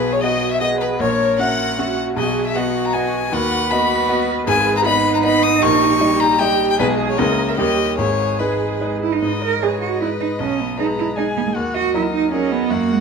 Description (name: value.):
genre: quick classical-period movement for piano quartet.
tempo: 154 BPM.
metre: 3/4.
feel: rubato.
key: B major, G# minor from 4.5 s.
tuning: A4 = 439 Hz.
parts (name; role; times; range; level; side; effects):
rich violin; melody; 0.0-13.0 s; F#4 to D#6; -21 LUFS; left 5 dB; none.
dark cello; second line; 0.0-13.0 s; G#3 to B4; -21 LUFS; right 8 dB; none.
clear grand piano; accompaniment; 0.0-13.0 s; G#1 to E5; -21 LUFS; left 1 dB; none.
dark violin; second line; 0.1-13.0 s; F#4 to A#5; -26 LUFS; left 3 dB; none.
room: moderate large studio reverb, RT60 0.9 s.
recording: minimal, uncompressed stereo recording.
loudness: -16 LUFS.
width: side -5 dB against mid.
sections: 0.0-9.2 A section; 9.2-13.0 B section.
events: none.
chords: 0.0 B; 1.0 F#7/A#; 2.2 B; 3.3 B/D#; 4.5 G#m; 5.6 D#7/A#; 6.8 G#m/B; 7.2 A#dim/C#; 7.6 D#7; 8.0 G#m; 10.4 G#m/B; 11.6 D#m.